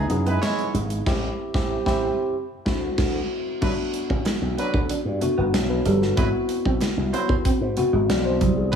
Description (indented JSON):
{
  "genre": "polished 1980s jazz-funk pop",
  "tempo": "94 BPM",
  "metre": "4/4",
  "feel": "straight",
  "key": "unclear",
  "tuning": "A4 = 440 Hz",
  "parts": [
    { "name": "warm horn section", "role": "second line", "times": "0.0-8.8 s", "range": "F#3 to C#5", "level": "-30 LUFS", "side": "right 3 dB", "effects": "none" },
    { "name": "tine electric piano", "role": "accompaniment", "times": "0.0-8.8 s", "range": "A3 to D5", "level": "-25 LUFS", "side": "left 2 dB", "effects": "lush chorus" },
    { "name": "slap bass with an envelope filter", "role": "bass", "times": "0.0-8.8 s", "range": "G1 to G#2", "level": "-25 LUFS", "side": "equal", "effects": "none" },
    { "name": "mellow electric guitar", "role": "riff", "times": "0.1-8.8 s", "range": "F#3 to D4", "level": "-28 LUFS", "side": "right 4 dB", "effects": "ensemble chorus" },
    { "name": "modern studio drum kit", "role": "drums", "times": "0.1-8.8 s", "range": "crash cymbal, hi-hat, kick drum, snare drum", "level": "-26 LUFS", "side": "right 1 dB", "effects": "gated reverb" },
    { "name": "congas", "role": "percussion", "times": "0.1-8.8 s", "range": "none", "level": "-35 LUFS", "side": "right 3 dB", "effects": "none" }
  ],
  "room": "light reverb, small room ambience",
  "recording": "studio ambience",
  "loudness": "-20 LUFS",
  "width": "side -7 dB against mid",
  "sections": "0.0-3.6 A section; 3.6-8.8 B section",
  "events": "band accent 1.1-3.6",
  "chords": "0.0 C#m9; 1.1 Am7; 2.3 D9; 3.6 Gmaj9; 6.2 G#7alt"
}